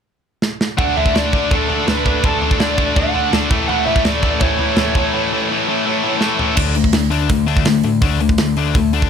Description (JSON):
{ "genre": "punk rock", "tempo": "166 BPM", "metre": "4/4", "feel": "straight", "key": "unclear", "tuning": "A4 = 439 Hz", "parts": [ { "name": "tight metal drum kit", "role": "drums", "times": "0.4-9.1 s", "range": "crash cymbal, hi-hat, kick drum, snare drum, toms", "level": "-18 LUFS", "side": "right 1 dB", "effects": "none" }, { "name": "lead guitar through a small cranked amp", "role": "melody", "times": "0.8-6.2 s", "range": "A4 to F#5", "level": "-22 LUFS", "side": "right 3 dB", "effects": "overdrive, ping-pong delay" }, { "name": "distorted electric guitar", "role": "riff", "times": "0.8-9.1 s", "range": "A2 to D4", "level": "-19 LUFS", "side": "left 13 dB", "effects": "overdrive" }, { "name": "tight distorted guitar", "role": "riff", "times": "0.8-6.6 s", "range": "A2 to D4", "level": "-21 LUFS", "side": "right 18 dB", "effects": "distortion" }, { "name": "overdriven picked electric bass", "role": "bass", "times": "6.6-9.1 s", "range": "D2 to A2", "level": "-19 LUFS", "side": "right 1 dB", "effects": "none" } ], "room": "light reverb", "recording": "none", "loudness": "-14 LUFS", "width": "side -7 dB against mid", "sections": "0.8-6.6 A section; 6.6-9.1 B section", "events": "drum fill 0.4-0.8, 6.2-6.6", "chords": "0.0 N.C.; 0.8 D5; 3.5 A; 6.6 D5" }